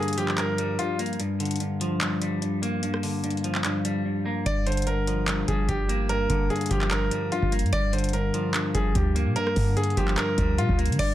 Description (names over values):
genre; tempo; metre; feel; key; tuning
hip hop, trap; 147 BPM; 4/4; half-time; G phrygian; A4 = 441 Hz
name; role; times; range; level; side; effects
clear concert grand piano; melody; 0.0-1.0, 4.5-11.1 s; F4 to D5; -29 LUFS; equal; tape echo
clean electric guitar; accompaniment; 0.0-11.1 s; G2 to Bb3; -27 LUFS; left 1 dB; spring reverb
booming analog drum machine; drums; 0.0-11.1 s; crash cymbal, handclaps, hi-hat, kick drum, rim click; -28 LUFS; equal; none
clean 808-style bass; bass; 4.5-11.1 s; G1 to D3; -26 LUFS; equal; none
room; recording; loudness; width
light reverb, digital ambience; none; -23 LUFS; side -13 dB against mid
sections
0.0-11.0 A section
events
break 0.0-4.5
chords
0.0 Gm7